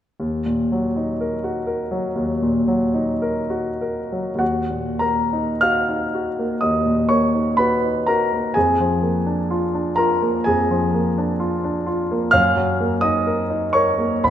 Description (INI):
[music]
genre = classical, romantic nocturne for solo piano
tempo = 47-66 BPM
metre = 4/4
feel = rubato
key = Eb minor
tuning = A4 = 441 Hz
[part]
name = warm grand piano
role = solo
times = 0.2-14.3 s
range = Ab1 to F6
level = -18 LUFS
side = equal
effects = none
[sound]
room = wet concert hall reverb, RT60 1.9 s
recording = minimal, uncompressed stereo recording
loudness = -18 LUFS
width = side -10 dB against mid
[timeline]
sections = 0.2-4.4 A section; 4.4-14.3 B section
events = none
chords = 0.2 Ebm; 8.6 Bb7/F; 12.3 Ebm/Gb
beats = | 0.20 1.21 2.17 3.22 | 4.41 5.61 6.62 7.59 | 8.56 9.48 10.46 11.41 | 12.34 13.27 14.22